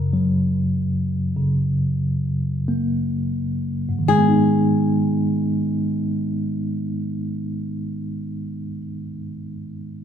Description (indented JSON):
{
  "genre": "pop",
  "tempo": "41-50 BPM",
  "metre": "4/4",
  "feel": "straight",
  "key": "G# minor",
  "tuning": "A4 = 439 Hz",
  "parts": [
    { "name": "flamenco guitar", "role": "melody", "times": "0.0-8.8 s", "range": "G#4 to A#4", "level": "-24 LUFS", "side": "left 7 dB", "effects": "none" },
    { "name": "tine electric piano", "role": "accompaniment", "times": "0.0-10.0 s", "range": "F#2 to D#4", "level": "-20 LUFS", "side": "equal", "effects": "medium tremolo" }
  ],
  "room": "wet large studio reverb, RT60 1.3 s",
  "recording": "band playing live in one room",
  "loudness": "-20 LUFS",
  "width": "side -8 dB against mid",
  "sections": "0.0-4.1 A section; 4.1-9.9 B section",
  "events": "slowing down 0.0-4.1",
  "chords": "0.0 F#; 4.1 G#m"
}